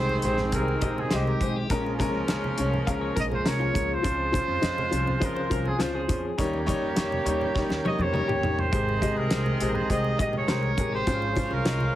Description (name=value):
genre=uptempo 1960s-style soul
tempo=102 BPM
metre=4/4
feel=straight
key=Ab major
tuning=A4 = 440 Hz
part: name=warm trumpet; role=melody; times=0.0-12.0 s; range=G4 to Eb5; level=-30 LUFS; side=right 2 dB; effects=plate reverb
part: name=warm horn section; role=second line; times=0.0-12.0 s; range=C3 to F5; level=-32 LUFS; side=right 2 dB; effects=slapback echo, plate reverb
part: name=clear grand piano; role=accompaniment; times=0.0-11.8 s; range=F3 to Eb5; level=-30 LUFS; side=left 3 dB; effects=plate reverb
part: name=tonewheel organ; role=sustained chords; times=0.0-12.0 s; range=C3 to Bb4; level=-35 LUFS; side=right 2 dB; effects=slow rotary speaker, overdrive, chorus vibrato, plate reverb
part: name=upright bass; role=bass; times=0.0-11.9 s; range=Ab1 to F2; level=-30 LUFS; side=equal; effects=none
part: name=congas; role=percussion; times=0.1-11.9 s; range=none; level=-38 LUFS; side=right 3 dB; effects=none
part: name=warm soul drum kit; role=drums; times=0.2-11.8 s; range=hi-hat, kick drum, snare drum, toms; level=-29 LUFS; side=equal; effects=none
part: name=clean electric guitar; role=riff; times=0.8-11.2 s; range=F4 to F5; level=-34 LUFS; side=left 5 dB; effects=wide subtle chorus
room=moderate studio reverb, RT60 0.5 s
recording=heavily compressed radio sound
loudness=-23 LUFS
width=side -13 dB against mid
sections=0.0-12.0 A section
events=drum fill 7.6-8.7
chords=0.0 Abmaj7; 1.7 Bbm7; 4.0 Dbmaj7; 6.4 Eb7; 8.7 Abmaj7; 11.1 Dbmaj7/Ab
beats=0.53 1.11 | 1.70 2.29 2.87 3.46 | 4.04 4.63 5.21 5.80 | 6.38 6.97 7.56 8.14 | 8.73 9.31 9.90 10.49 | 11.07 11.66